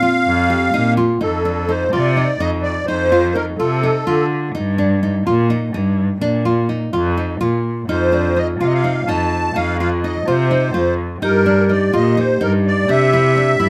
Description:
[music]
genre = contemporary instrumental, chamber music in an uneven meter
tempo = 252 BPM (eighths)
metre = 7/8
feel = straight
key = F mixolydian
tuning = A4 = 440 Hz
[part]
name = musette accordion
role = melody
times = 0.0-4.3, 7.9-13.7 s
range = A4 to A5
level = -21 LUFS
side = equal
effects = none
[part]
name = vibraphone with medium hard mallets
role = second line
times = 0.0-0.9, 7.9-13.7 s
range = C4 to G4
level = -23 LUFS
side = equal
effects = none
[part]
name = nylon-string guitar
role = arpeggios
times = 0.0-13.7 s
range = D4 to G4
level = -23 LUFS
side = equal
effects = none
[part]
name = rich cello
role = bass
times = 0.3-13.7 s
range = F2 to D3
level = -21 LUFS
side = equal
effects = none
[sound]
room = little or no reverb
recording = close, detailed microphones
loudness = -17 LUFS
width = mono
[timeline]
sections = 0.0-1.2 A section; 1.2-13.7 B section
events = none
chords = 0.0 Bbsus2; 1.2 F7; 4.6 Eb/G; 6.2 Bb; 7.9 F7(no3); 11.2 Eb/G; 12.9 C

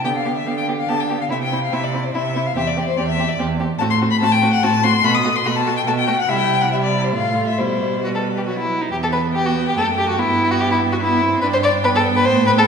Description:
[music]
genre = quick classical-period movement for string quartet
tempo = 144 BPM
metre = 3/4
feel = rubato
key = C major, E minor from 3.8 s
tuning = A4 = 440 Hz
[part]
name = warm violin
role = melody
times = 0.0-12.7 s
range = B4 to D#6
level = -21 LUFS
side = left 6 dB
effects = none
[part]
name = warm violin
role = second line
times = 0.0-12.6 s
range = D#4 to D5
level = -21 LUFS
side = left 1 dB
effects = none
[part]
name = warm viola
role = accompaniment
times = 0.0-12.7 s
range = F#3 to D4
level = -25 LUFS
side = right 3 dB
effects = none
[part]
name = rich cello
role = bass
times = 0.1-12.7 s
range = E2 to D3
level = -22 LUFS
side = right 4 dB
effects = none
[sound]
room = wet recital hall reverb, RT60 1.6 s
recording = recorded in a church or concert hall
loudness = -16 LUFS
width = side -6 dB against mid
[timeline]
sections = 0.0-8.9 A section; 8.9-12.7 B section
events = none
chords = 0.1 G/D; 1.3 C; 2.6 C/E; 3.8 F#dim/A; 5.0 B5; 6.3 C; 7.1 F/A; 7.6 Em/B; 8.5 B; 8.9 Em; 10.2 Em/G; 11.4 G

